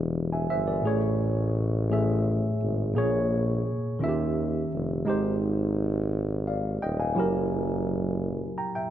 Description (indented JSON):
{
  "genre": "slow six-eight R&B",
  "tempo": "57 BPM (dotted quarters)",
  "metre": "6/8",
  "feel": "straight",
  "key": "unclear",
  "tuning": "A4 = 440 Hz",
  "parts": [
    { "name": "tine electric piano", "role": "accompaniment", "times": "0.0-8.9 s", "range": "A2 to A#5", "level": "-27 LUFS", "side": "equal", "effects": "lush chorus" },
    { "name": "warm tuba", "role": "bass", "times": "0.0-8.6 s", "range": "D#1 to D#2", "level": "-28 LUFS", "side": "equal", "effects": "none" }
  ],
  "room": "moderate plate reverb, RT60 2.7 s",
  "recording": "none",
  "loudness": "-24 LUFS",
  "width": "side -11 dB against mid",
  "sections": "0.0-8.9 A section",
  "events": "none",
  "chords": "0.0 E7alt; 0.8 Amaj7; 3.0 A#m7; 4.0 D#7b9; 5.1 G#maj7; 7.2 F#7b9",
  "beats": "| 0.84 1.90 | 2.95 4.00 | 5.06 6.11 | 7.16 8.21"
}